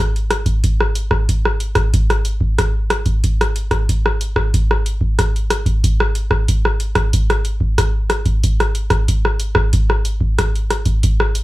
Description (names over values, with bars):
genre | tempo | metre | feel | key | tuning
samba | 92 BPM | 4/4 | straight | none | none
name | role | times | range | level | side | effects
booming analog drum machine | drums | 0.2-11.4 s | hi-hat, kick drum, rim click | -15 LUFS | equal | none
room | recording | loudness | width
moderate studio reverb, RT60 0.5 s | none | -15 LUFS | side -18 dB against mid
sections
0.0-11.4 A section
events
none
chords
none